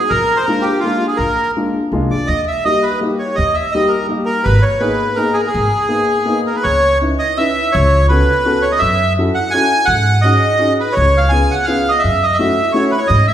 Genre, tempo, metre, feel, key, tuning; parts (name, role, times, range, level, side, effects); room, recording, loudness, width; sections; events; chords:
musette waltz; 167 BPM; 3/4; straight; G# minor, C# minor from 6.7 s; A4 = 440 Hz
bandoneon; melody; 0.0-13.3 s; E#4 to G#5; -15 LUFS; right 1 dB
upright bass; bass; 0.1-13.3 s; G#1 to G#2; -17 LUFS; equal
dark upright piano; accompaniment; 0.5-12.9 s; G3 to B4; -19 LUFS; left 2 dB
wet recital hall reverb, RT60 1.6 s; recorded in a church or concert hall; -12 LUFS; side -10 dB against mid
0.0-6.7 A section; 6.7-13.3 B section
0.1 A#7; 2.3 D#; 4.5 G#madd9; 6.7 C#m9; 7.7 A69/C#; 8.8 F#m7; 9.9 G#7sus4; 11.0 C#7; 12.0 F#m7